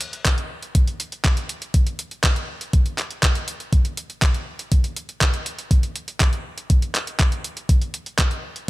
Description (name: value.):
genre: italo disco.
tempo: 121 BPM.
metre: 4/4.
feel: straight.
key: none.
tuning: none.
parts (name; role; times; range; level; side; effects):
detuned 8-bit digital drum machine; drums; 0.0-8.7 s; handclaps, hi-hat; -25 LUFS; equal; overdrive.
electronic kick drum; drums; 0.3-8.3 s; none; -18 LUFS; equal; none.
room: digital ambience.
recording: none.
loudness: -19 LUFS.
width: side -19 dB against mid.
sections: 0.0-8.7 A section.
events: none.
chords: none.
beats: 0.26 0.75 1.25 | 1.74 2.24 2.73 3.23 | 3.73 4.22 4.72 5.21 | 5.71 6.21 6.70 7.20 | 7.69 8.19.